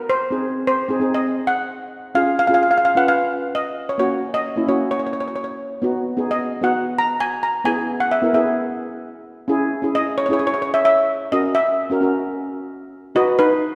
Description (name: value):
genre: calypso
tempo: 131 BPM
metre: 4/4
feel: straight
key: B major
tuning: A4 = 440 Hz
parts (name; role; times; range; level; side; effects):
- steel pan; melody; 0.0-13.8 s; D#4 to A#5; -21 LUFS; equal; none
- steel pan; accompaniment; 0.3-13.6 s; A#3 to B4; -24 LUFS; equal; none
room: wet concert hall reverb, RT60 2.4 s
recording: none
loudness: -20 LUFS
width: mono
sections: 0.0-13.2 A section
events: none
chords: 0.3 G#7; 2.2 C#7; 4.0 F#; 5.8 B; 7.7 E/B; 9.5 C#m; 11.3 F#7; 13.2 B